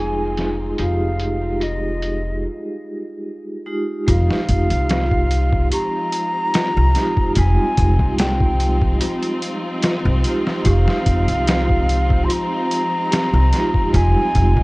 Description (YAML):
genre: trip hop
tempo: 73 BPM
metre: 4/4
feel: straight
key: F minor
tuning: A4 = 440 Hz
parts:
  - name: silver concert flute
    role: melody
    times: 0.0-14.6 s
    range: Eb5 to C6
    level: -24 LUFS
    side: equal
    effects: tape echo
  - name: vibraphone with hard mallets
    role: accompaniment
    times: 0.0-14.6 s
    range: G3 to Ab4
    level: -24 LUFS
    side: right 1 dB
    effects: tremolo, low-pass filter
  - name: clear studio string section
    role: sustained chords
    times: 0.0-14.6 s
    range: F3 to F4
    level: -28 LUFS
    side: equal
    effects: none
  - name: worn celesta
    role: arpeggios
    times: 0.0-14.6 s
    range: F4 to Ab4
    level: -29 LUFS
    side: left 1 dB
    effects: tape echo
  - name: upright bass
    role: bass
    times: 0.0-14.6 s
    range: F1 to C2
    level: -18 LUFS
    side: equal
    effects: tube saturation
  - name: trip hop sampler-style drum kit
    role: drums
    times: 0.4-14.6 s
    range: hi-hat, kick drum, snare drum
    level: -21 LUFS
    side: equal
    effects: low-pass filter on hats, low-pass filter on snare, low-pass filter on kick
room: little or no reverb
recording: worn, warbling old tape, cassette tape, warbly pitch drift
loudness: -16 LUFS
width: side -23 dB against mid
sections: 0.0-4.1 A section; 4.1-14.6 B section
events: filter sweep on vibraphone 0.0-4.1; break 2.4-4.1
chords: 0.0 Fm9